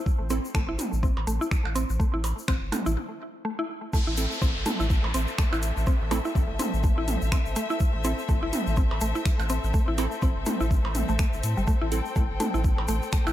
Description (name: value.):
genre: minimal techno.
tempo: 124 BPM.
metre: 4/4.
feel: swing 58% on 16ths.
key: A minor.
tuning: A4 = 439 Hz.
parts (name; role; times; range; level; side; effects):
bubbling stepped-filter texture; texture; 0.0-3.0 s; C4 to C5; -45 LUFS; left 1 dB; chorus, built-in reverb, sidechain pumping.
electronic kick drum; drums; 0.1-13.2 s; none; -24 LUFS; equal; overdrive, small room ambience.
egg shaker; percussion; 0.1-13.3 s; none; -40 LUFS; left 6 dB; none.
saturated sub bass; bass; 0.2-13.3 s; G1 to A2; -28 LUFS; equal; sidechain pumping.
mallet-like synth pluck; riff; 0.3-13.3 s; G3 to E4; -31 LUFS; equal; chorus, sidechain pumping, analog delay.
wavetable chord stab; stabs; 0.3-0.4, 4.2-12.0 s; C4 to A4; -35 LUFS; right 4 dB; ping-pong delay.
garage drum kit; drums; 0.3-13.2 s; finger snaps, hi-hat; -35 LUFS; right 1 dB; overdrive, small room ambience.
electronic toms and percussion blips; percussion; 0.8-13.3 s; none; -33 LUFS; right 2 dB; small room ambience, ping-pong delay.
downlifter; sound effects; 3.9-7.8 s; none; -35 LUFS; equal; none.
clear studio string section; texture; 3.9-13.3 s; C4 to G5; -34 LUFS; left 4 dB; sidechain pumping.
room: light reverb, digital ambience.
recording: none.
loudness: -23 LUFS.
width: side -13 dB against mid.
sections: 0.0-3.9 A section; 3.9-13.3 B section.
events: break 3.0-3.9; drop 3.9-13.3.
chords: 0.0 Am.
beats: | 0.06 0.55 1.03 1.51 | 2.00 2.48 2.97 3.45 | 3.93 4.42 4.90 5.38 | 5.87 6.35 6.84 7.32 | 7.80 8.29 8.77 9.26 | 9.74 10.22 10.71 11.19 | 11.68 12.16 12.64 13.13.